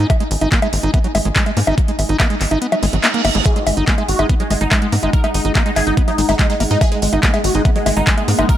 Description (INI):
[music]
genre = psychedelic trance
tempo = 143 BPM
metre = 4/4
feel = straight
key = unclear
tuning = A4 = 440 Hz
[part]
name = overdriven acid bass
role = riff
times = 0.0-8.5 s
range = F#3 to D#4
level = -22 LUFS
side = right 1 dB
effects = auto-pan, sidechain pumping, digital delay
[part]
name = tight sequencer bass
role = bass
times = 0.0-8.4 s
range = G#1 to G#2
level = -18 LUFS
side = equal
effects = none
[part]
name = airy breathy pad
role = texture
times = 0.0-8.6 s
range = G#3 to G#5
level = -28 LUFS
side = equal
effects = chorus, sidechain pumping
[part]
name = drum and bass drum kit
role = drums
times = 0.1-8.6 s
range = bongos, handclaps, hi-hat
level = -19 LUFS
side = left 1 dB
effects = overdrive
[part]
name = electronic kick drum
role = drums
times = 0.1-8.6 s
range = none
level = -15 LUFS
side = equal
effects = overdrive
[part]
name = reverse cymbal and zap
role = sound effects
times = 2.8-3.5 s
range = none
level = -23 LUFS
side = right 5 dB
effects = none
[part]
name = supersaw stab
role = melody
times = 3.5-8.6 s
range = G#3 to A#4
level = -22 LUFS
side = equal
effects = phaser, sidechain pumping, digital delay
[part]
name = evolving wavetable pad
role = sustained chords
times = 4.7-8.6 s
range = G#3 to D#4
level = -26 LUFS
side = right 2 dB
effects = chorus, built-in reverb, sidechain pumping
[sound]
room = little or no reverb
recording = none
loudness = -13 LUFS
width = side -12 dB against mid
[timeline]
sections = 0.0-8.6 A section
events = fade-in on analog synth pad 0.0-8.6; kick drops out 2.6-3.5; reverse cymbal 2.8-3.5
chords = 0.0 G#5